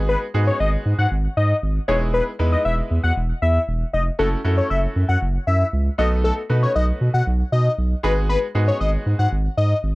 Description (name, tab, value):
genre	dance-pop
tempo	117 BPM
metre	4/4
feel	straight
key	unclear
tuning	A4 = 438 Hz
part	bright grand piano	accompaniment	0.0-9.3 s	G#3 to B4	-27 LUFS	right 1 dB	none
part	saturated sub bass	bass	0.0-9.9 s	E1 to B2	-19 LUFS	equal	none
part	fat analog lead	melody	0.1-9.8 s	A4 to F#5	-23 LUFS	left 2 dB	tape echo
room	little or no reverb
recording	dry, close 1970s-style studio recording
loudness	-18 LUFS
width	side -21 dB against mid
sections	0.0-9.9 A section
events	none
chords	0.0 G#m7; 1.9 Emaj7; 4.2 F#m7; 6.0 B7; 8.0 G#m7